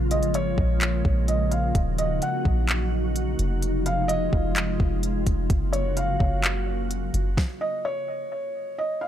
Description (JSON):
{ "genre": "hip hop, atmospheric cloud-rap", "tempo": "128 BPM", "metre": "4/4", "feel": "half-time", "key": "unclear", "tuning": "A4 = 440 Hz", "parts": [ { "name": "glassy FM pad", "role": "sustained chords", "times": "0.0-7.4 s", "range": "C3 to Gb4", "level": "-29 LUFS", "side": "equal", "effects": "ensemble chorus, built-in reverb, sidechain pumping" }, { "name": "soft 808-style bass", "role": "bass", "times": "0.0-7.4 s", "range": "Eb1 to Bb1", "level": "-26 LUFS", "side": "equal", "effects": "none" }, { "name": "felt-muted upright piano", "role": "melody", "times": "0.1-9.1 s", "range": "Db5 to Gb5", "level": "-29 LUFS", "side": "equal", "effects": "analog delay" }, { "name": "smooth R&B drum kit", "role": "drums", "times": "0.1-7.5 s", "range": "handclaps, hi-hat, kick drum, snare drum", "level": "-25 LUFS", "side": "equal", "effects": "none" } ], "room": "little or no reverb", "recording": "echo-heavy mix", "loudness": "-22 LUFS", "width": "side -10 dB against mid", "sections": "0.0-9.1 A section", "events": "stop 7.4-9.1", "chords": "0.0 Bbm7; 1.8 Ebm7; 3.6 Fm7; 5.5 Gbmaj7; 7.4 N.C." }